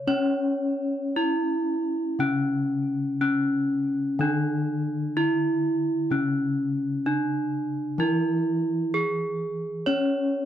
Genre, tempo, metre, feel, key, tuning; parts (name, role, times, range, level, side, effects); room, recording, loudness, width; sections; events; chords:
gamelan; 55-64 BPM; 4/4; straight; A4 = 441 Hz
gamelan-type bronze metallophone; melody; 0.0-10.5 s; C#4 to C#5; -24 LUFS; right 1 dB
gamelan-type bronze metallophone; accompaniment; 0.0-10.5 s; C#3 to C#4; -29 LUFS; left 3 dB
small room ambience; dry, close 1970s-style studio recording; -23 LUFS; side -10 dB against mid
0.0-6.1 A section; 6.1-10.5 B section